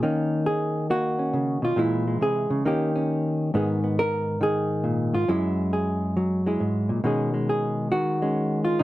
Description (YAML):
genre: solo jazz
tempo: 136 BPM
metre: 4/4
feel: swing 66% on 8ths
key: Eb minor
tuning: A4 = 440 Hz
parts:
  - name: hollow-body jazz guitar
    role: solo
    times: 0.0-8.8 s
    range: Gb2 to Bb4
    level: -22 LUFS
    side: equal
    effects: none
room: light reverb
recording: close, detailed microphones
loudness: -22 LUFS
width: side -16 dB against mid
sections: 0.0-8.8 A section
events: none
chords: 0.0 Ebm7; 1.8 Bbm7b5; 2.7 Eb7; 3.5 Abmadd9; 5.3 Gb7sus2; 7.0 B69